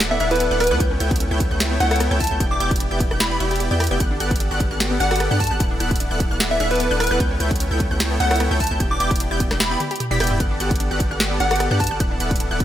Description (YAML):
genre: future bass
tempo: 150 BPM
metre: 4/4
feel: swing 54% on 16ths, half-time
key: D major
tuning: A4 = 440 Hz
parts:
  - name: wide unison pluck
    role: arpeggios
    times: 0.0-12.6 s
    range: F#6 to B6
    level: -30 LUFS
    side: equal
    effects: sidechain pumping, tape echo
  - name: wide unison pluck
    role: arpeggios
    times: 0.0-12.6 s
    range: B3 to D5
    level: -31 LUFS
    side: left 1 dB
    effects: vintage 12-bit sampler grit, sidechain pumping, tape echo
  - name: supersaw chords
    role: riff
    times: 0.0-12.6 s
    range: B3 to B5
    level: -25 LUFS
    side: equal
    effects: sidechain pumping, tape echo
  - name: long sustained 808-style bass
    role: bass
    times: 0.0-12.6 s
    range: D1 to G2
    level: -24 LUFS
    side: equal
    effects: sidechain pumping
  - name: trap drum kit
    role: drums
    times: 0.0-12.6 s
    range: hi-hat, rim click, snare drum, toms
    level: -24 LUFS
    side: equal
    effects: none
  - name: plucky unison lead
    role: melody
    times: 0.1-11.9 s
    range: B4 to D6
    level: -24 LUFS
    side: equal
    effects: sidechain pumping, tape echo
  - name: electronic kick drum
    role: drums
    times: 0.8-12.6 s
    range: none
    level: -23 LUFS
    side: equal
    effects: none
room: light reverb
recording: none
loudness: -17 LUFS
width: side -11 dB against mid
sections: 0.0-12.6 A section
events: kick drops out 9.6-10.4; drum fill 9.8-10.4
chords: 0.0 D69; 0.8 A9/C#; 2.4 Em7; 4.0 Gmaj9; 5.6 D69; 7.2 A9/C#; 8.8 Em7; 10.4 Gmaj9; 12.0 D69